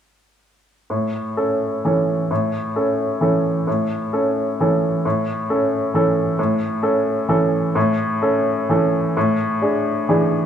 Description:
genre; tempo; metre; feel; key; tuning
classical, piano waltz; 131 BPM; 3/4; uneven beats, rubato; A major; A4 = 440 Hz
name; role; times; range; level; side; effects
clear upright piano; solo; 0.9-10.5 s; A2 to A4; -17 LUFS; equal; none
room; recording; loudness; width
wet recital hall reverb, RT60 1.6 s; none; -17 LUFS; side -8 dB against mid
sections
0.9-10.5 A section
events
none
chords
0.9 A; 9.2 E7/A

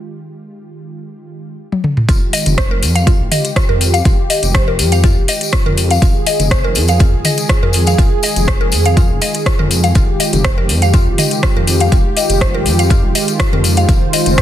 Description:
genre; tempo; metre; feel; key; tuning
afro house; 122 BPM; 4/4; straight; F minor; A4 = 440 Hz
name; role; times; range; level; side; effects
warm analog pad; sustained chords; 0.0-14.4 s; Eb3 to C5; -20 LUFS; right 1 dB; chorus, sidechain pumping
afro-pop drum kit; drums; 1.7-14.4 s; hi-hat, rim click, toms; -18 LUFS; left 1 dB; studio reverb
mallet-like synth pluck; arpeggios; 2.1-14.4 s; F4 to F5; -20 LUFS; left 1 dB; chorus, phaser, sidechain pumping, digital delay
dark detuned saw bass; bass; 2.1-14.4 s; F1 to F2; -16 LUFS; equal; sidechain pumping
electronic kick drum; drums; 2.1-14.4 s; none; -13 LUFS; equal; studio reverb
tambourine; percussion; 2.1-14.4 s; none; -23 LUFS; left 6 dB; none
room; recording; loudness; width
digital ambience; dense, heavily limited modern master; -11 LUFS; side -11 dB against mid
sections
0.0-2.1 A section; 2.1-14.4 B section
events
drum fill 1.7-2.1; drop 2.1-14.4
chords
0.0 Fm9

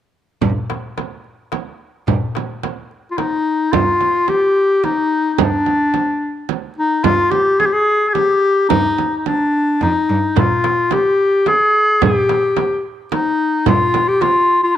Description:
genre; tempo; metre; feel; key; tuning
Arabic maqam ensemble; 109 BPM; 3/4; straight; G maqam hijaz; A4 = 440 Hz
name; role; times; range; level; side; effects
rich cello; bass; 0.4-13.8 s; F2 to G2; -21 LUFS; right 2 dB; none
darbuka; percussion; 0.4-3.3, 10.4-14.3 s; none; -23 LUFS; left 4 dB; none
frame drum; percussion; 0.4-14.4 s; none; -21 LUFS; right 13 dB; none
warm clarinet; melody; 3.1-14.8 s; D4 to Ab4+29c; -14 LUFS; left 2 dB; none
room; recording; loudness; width
wet spring reverb, RT60 1.6 s, small room ambience; 1960s-style stereo; -14 LUFS; side -10 dB against mid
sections
0.4-3.7 A section; 3.7-14.8 B section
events
none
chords
none

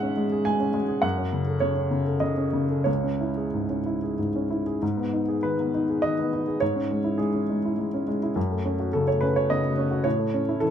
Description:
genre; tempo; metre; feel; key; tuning
neoclassical minimalist piano; 89-108 BPM; 3/4; rubato; C# minor; A4 = 439 Hz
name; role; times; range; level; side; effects
warm upright piano; solo; 0.0-10.7 s; C#2 to G#5; -23 LUFS; equal; none
room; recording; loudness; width
light reverb; close, detailed microphones; -23 LUFS; side -9 dB against mid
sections
0.0-4.8 A section; 4.8-10.7 A section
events
none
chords
0.0 C#m/G#; 1.0 F#m; 2.9 C#m; 4.8 G#m; 6.6 C#m/G#; 8.4 F#m; 10.1 A

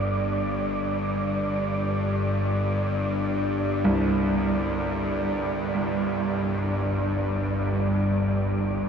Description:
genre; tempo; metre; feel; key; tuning
dark ambient drone; free time; none; none; unclear; A4 = 442 Hz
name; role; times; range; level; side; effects
bowed-like drone; drone; 0.0-8.9 s; G1 to G2; -25 LUFS; left 1 dB; built-in reverb
wind-like tuned noise texture; texture; 0.0-8.9 s; D5; -31 LUFS; right 3 dB; built-in reverb
clear concert grand piano; arpeggios; 3.8-8.9 s; C2; -28 LUFS; right 2 dB; diffuse ambient delay
room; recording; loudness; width
wet cathedral reverb, RT60 5.1 s; dreamy mix soaked in reverb, cassette tape; -23 LUFS; side -7 dB against mid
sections
0.0-8.9 A section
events
none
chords
0.0 G5

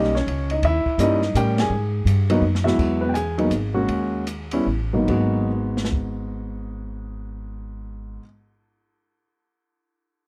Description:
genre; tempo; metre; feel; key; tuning
jazz piano trio; 142-167 BPM; 3/4; swing 63% on 8ths; G# minor; A4 = 440 Hz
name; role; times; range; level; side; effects
warm grand piano; melody; 0.0-8.2 s; E2 to G#5; -25 LUFS; equal; none
upright bass; bass; 0.0-8.2 s; G#1 to A2; -27 LUFS; equal; none
open jazz drum kit; drums; 0.0-6.0 s; crash cymbal, hi-hat, kick drum, ride cymbal, snare drum; -33 LUFS; equal; none
room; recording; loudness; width
little or no reverb; dry, close 1970s-style studio recording; -22 LUFS; mono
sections
0.0-2.8 A section; 2.8-5.1 B section; 5.1-7.6 C section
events
band accent 1.5; drum fill 2.4-2.8; slowing down 2.8-5.1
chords
0.0 D#7b9; 1.7 G#m7; 2.8 Eadd9; 3.5 G#9sus4; 3.9 D#7sus4; 4.7 B7/A; 5.1 G#m7

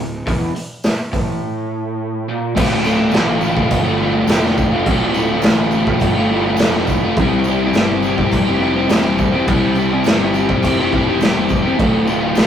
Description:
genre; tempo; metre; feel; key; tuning
garage rock duo or trio; 104 BPM; 4/4; straight; D minor; A4 = 440 Hz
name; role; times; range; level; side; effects
crunchy overdriven guitar; riff; 0.0-12.5 s; D2 to C5; -16 LUFS; left 1 dB; none
fuzz picked electric bass; bass; 0.0-12.5 s; D1 to C2; -24 LUFS; right 1 dB; overdrive
raw garage drum kit; drums; 0.3-12.5 s; crash cymbal, hi-hat, kick drum, snare drum; -18 LUFS; right 1 dB; none
tambourine; percussion; 0.8-12.5 s; none; -39 LUFS; left 2 dB; none
room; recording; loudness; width
moderate stone room reverb, RT60 1.0 s; rough rehearsal-room recording, warm saturation; -14 LUFS; side -9 dB against mid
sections
0.0-2.6 A section; 2.6-12.5 B section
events
break 1.4-2.6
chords
0.0 D5; 2.6 Dm; 7.2 C; 11.8 Dm

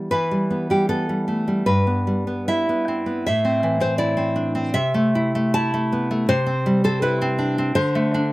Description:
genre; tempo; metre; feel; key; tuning
romantic piece for solo classical guitar; 71-83 BPM; 2/4; rubato; E minor; A4 = 440 Hz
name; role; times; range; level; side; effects
nylon-string guitar; solo; 0.0-8.3 s; G2 to A5; -18 LUFS; equal; none
room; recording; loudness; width
light reverb; recorded outdoors, with no room sound; -18 LUFS; side -18 dB against mid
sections
0.1-8.3 A section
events
none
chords
0.1 Em; 1.7 Em/G; 3.2 Am; 4.7 Am/C; 6.3 C; 7.7 D5

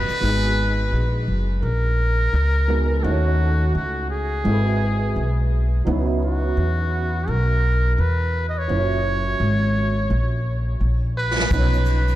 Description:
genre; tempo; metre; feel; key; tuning
hip hop, jazz-hop; 85 BPM; 4/4; swing 63% on 16ths; G# minor; A4 = 439 Hz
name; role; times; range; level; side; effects
trumpet with metal mute; melody; 0.0-12.2 s; F#4 to D#5; -25 LUFS; equal; ping-pong delay
dark baby grand piano; accompaniment; 0.0-12.2 s; A#2 to C#5; -28 LUFS; right 3 dB; ensemble chorus
upright bass; bass; 0.0-12.2 s; F#1 to E2; -20 LUFS; equal; none
jazz brush drum kit; drums; 0.1-0.2, 11.4-12.2 s; kick drum, ride cymbal, snare drum; -27 LUFS; equal; none
egg shaker and congas; percussion; 0.1-0.2, 11.5-12.2 s; none; -43 LUFS; left 2 dB; none
room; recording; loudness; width
light reverb, small room ambience; none; -18 LUFS; side -14 dB against mid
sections
0.2-12.2 A section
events
drum fill 10.1-11.5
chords
0.2 G#m9; 3.0 D#m7b5; 4.5 G#7alt; 5.9 C#m11; 8.7 F#7; 11.5 Badd9(#11)

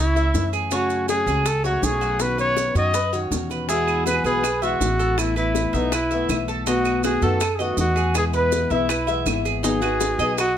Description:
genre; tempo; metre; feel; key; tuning
latin, Cuban son and guajira; 161 BPM; 4/4; straight; E major; A4 = 440 Hz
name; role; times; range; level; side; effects
mellow trumpet; melody; 0.0-10.6 s; D#4 to D#5; -23 LUFS; equal; plate reverb
Cuban tres; arpeggios; 0.0-10.6 s; C#4 to E5; -27 LUFS; right 2 dB; none
upright bass; bass; 0.0-10.6 s; G#1 to F#2; -25 LUFS; right 1 dB; none
picked acoustic archtop guitar; accompaniment; 0.1-10.4 s; B2 to G#4; -27 LUFS; left 3 dB; none
bongos; percussion; 0.2-10.6 s; none; -30 LUFS; left 5 dB; none
maracas; percussion; 0.2-10.6 s; none; -33 LUFS; right 7 dB; none
claves; percussion; 3.9-10.6 s; none; -32 LUFS; right 6 dB; none
room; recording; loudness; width
light reverb; close, detailed microphones; -19 LUFS; side -9 dB against mid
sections
0.0-9.6 A section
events
none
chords
0.0 A; 0.7 F#madd9; 2.2 Badd9; 3.7 Eadd9; 5.2 Asus2; 6.7 B7; 8.2 E; 9.6 G#m7

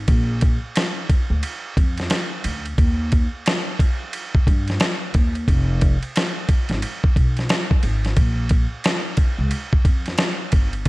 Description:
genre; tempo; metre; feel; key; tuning
hip hop, jazz-hop; 89 BPM; 4/4; swing 62% on 16ths; unclear; A4 = 440 Hz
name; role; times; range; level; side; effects
upright bass; bass; 0.0-10.9 s; F1 to G2; -22 LUFS; equal; none
dusty soul sampler-style drum kit; drums; 0.1-10.9 s; hi-hat, kick drum, ride cymbal, snare drum; -19 LUFS; equal; none
room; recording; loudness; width
light reverb, digital ambience; none; -18 LUFS; side -20 dB against mid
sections
0.0-10.9 A section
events
none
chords
none

